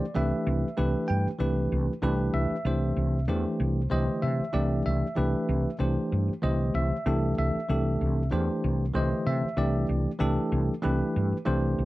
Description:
electric jazz fusion; 95 BPM; 4/4; swing 54% on 16ths; C major; A4 = 442 Hz
bell-like tine electric piano; accompaniment; 0.0-11.8 s; D3 to G5; -28 LUFS; equal; fast stereo tremolo
woody fretless electric bass; bass; 0.2-11.8 s; C2 to C3; -27 LUFS; equal; lush chorus
light reverb; dark, warm production; -24 LUFS; side -18 dB against mid
0.0-11.8 A section
0.0 Cmaj9

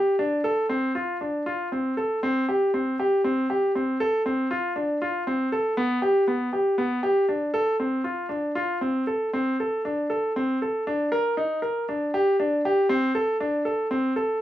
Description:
contemporary instrumental, contemporary; 236 BPM (eighths); 7/8; straight; D dorian; A4 = 440 Hz
bright grand piano; solo; 0.0-14.4 s; B3 to Bb4; -22 LUFS; equal
light reverb; small room ambience; -22 LUFS; side -13 dB against mid
0.0-9.3 A section; 9.3-14.4 B section

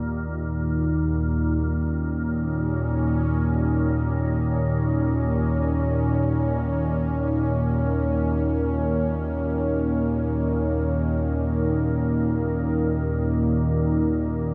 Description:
dark ambient drone; free time; A4 = 441 Hz
sweeping resonant pad; sustained chords; 0.0-14.5 s; Eb3 to Eb4; -26 LUFS; equal; chorus
organ-like drone; drone; 0.0-14.5 s; Eb2 to Bb2; -27 LUFS; equal; ensemble chorus, built-in reverb
wet cathedral reverb, RT60 7.1 s; -24 LUFS; mono
0.0-14.5 A section
0.0 Eb5

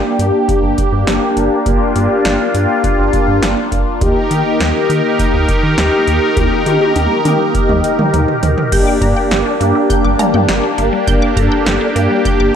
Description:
synth-pop; 102 BPM; 4/4; straight; G minor; A4 = 440 Hz
mellow synth brass; accompaniment; 0.0-12.6 s; Bb3 to A4; -16 LUFS; left 2 dB; chorus
phased analog pad; sustained chords; 0.0-12.6 s; Eb3 to Bb4; -16 LUFS; equal; phaser, chorus
rubbery square bass; bass; 0.2-12.5 s; G1 to Eb3; -18 LUFS; equal
electro analog drum machine; drums; 0.2-12.4 s; cowbell, crash cymbal, hi-hat, kick drum, snare drum, toms; -18 LUFS; equal; gated reverb
resonant blip pluck; arpeggios; 8.7-12.5 s; G3 to G6; -22 LUFS; right 1 dB; phaser, analog delay
light reverb; -11 LUFS; side -8 dB against mid
0.0-8.7 A section; 8.7-12.6 B section
drum fill 6.4-8.7
0.0 Gm; 4.0 Eb; 8.7 Gm

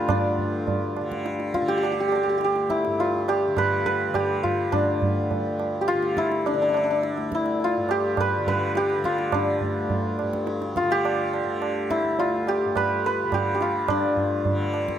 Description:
indian classical, Hindustani; 104 BPM; 4/4; straight; D raga bageshri; A4 = 441 Hz
santur; melody; 0.0-15.0 s; D4 to B4; -23 LUFS; left 1 dB
tanpura; drone; 0.0-15.0 s; D2 to D3; -32 LUFS; equal
tabla; percussion; 0.1-15.0 s; -28 LUFS; right 5 dB
moderate recital hall reverb, RT60 1.4 s; close, detailed microphones; -22 LUFS; side -10 dB against mid
0.0-13.9 A section; 13.9-15.0 B section

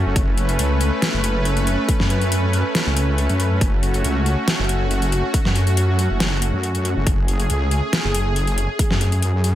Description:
heavy wobble dubstep; 139 BPM; 4/4; half-time; F# minor; A4 = 440 Hz
supersaw pad; sustained chords; 0.0-9.6 s; A3 to B4; -23 LUFS; equal; sidechain pumping
wobble bass; bass; 0.0-9.5 s; F#1 to F#2; -19 LUFS; equal; chorus, overdrive
dubstep drum kit; drums; 0.2-9.5 s; hi-hat, snare drum; -24 LUFS; equal; overdrive
electronic kick drum; drums; 0.2-8.9 s; -20 LUFS; equal; overdrive
little or no reverb; -17 LUFS; side -13 dB against mid
0.0-9.6 A section
0.0 F#m

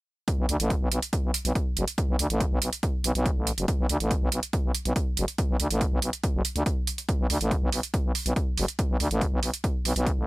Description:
driving peak-time techno; 141 BPM; 4/4; straight; B minor; A4 = 443 Hz
electronic hi-hat; drums; 0.3-10.2 s; -30 LUFS; right 4 dB; sidechain pumping on hats
electronic kick drum; drums; 0.3-10.2 s; -27 LUFS; equal
growling FM bass; bass; 0.4-10.3 s; F#1 to D2; -26 LUFS; equal; sidechain pumping
little or no reverb; -24 LUFS; side -18 dB against mid
0.3-10.3 A section

